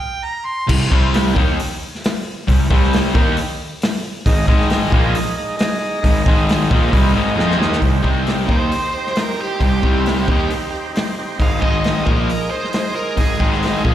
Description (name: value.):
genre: blues rock power trio and southern rock.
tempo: 134 BPM.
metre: 4/4.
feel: straight.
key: C minor.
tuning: A4 = 440 Hz.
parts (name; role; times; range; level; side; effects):
bright harmonica; melody; 0.0-0.7 s; G5 to C6; -25 LUFS; right 2 dB; overdrive, slapback echo, digital delay.
fuzz guitar; riff; 0.7-13.9 s; Ab2 to F4; -20 LUFS; left 1 dB; distortion, slapback echo.
fuzz picked electric bass; bass; 0.7-13.9 s; Ab1 to F2; -20 LUFS; equal; overdrive.
vintage drum kit; drums; 0.7-13.9 s; crash cymbal, hi-hat, kick drum, snare drum; -18 LUFS; equal; none.
overdriven tonewheel organ; sustained chords; 4.3-13.9 s; Ab3 to Ab5; -24 LUFS; right 2 dB; slow rotary speaker.
bluesy overdriven lead guitar; second line; 8.5-13.9 s; G4 to F5; -23 LUFS; right 2 dB; distortion, slapback echo, digital delay.
room: small room ambience.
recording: live gig heard through the venue's PA, recital hall reverb.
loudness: -15 LUFS.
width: side -11 dB against mid.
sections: 0.7-7.8 A section; 7.8-13.9 B section.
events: stop 0.0-0.7; tonewheel organ fill 6.9-7.8; drum fill 7.4-7.8; lead electric guitar solo 7.8-13.9.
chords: 0.2 N.C.; 0.7 Cm; 4.3 Ab5; 7.8 Cm; 11.4 Ab5.